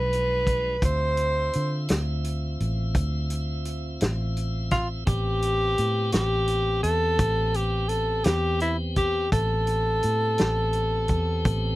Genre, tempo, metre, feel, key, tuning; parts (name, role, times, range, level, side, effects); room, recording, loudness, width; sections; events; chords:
slow blues; 56 BPM (dotted quarters); 12/8; straight; A minor; A4 = 440 Hz
warm tenor saxophone; melody; 0.0-11.8 s; E4 to C5; -25 LUFS; equal
tonewheel organ; sustained chords; 0.0-11.8 s; F3 to E5; -35 LUFS; equal; overdrive, slow rotary speaker
vintage muted fingered electric bass; bass; 0.0-11.8 s; A1 to D3; -26 LUFS; equal
warm soul drum kit; drums; 0.1-11.6 s; hi-hat, kick drum, snare drum; -26 LUFS; equal
little or no reverb; -22 LUFS; side -17 dB against mid
0.0-11.8 A section
0.0 E7b9 (rootless); 0.8 Dm7; 5.1 Am7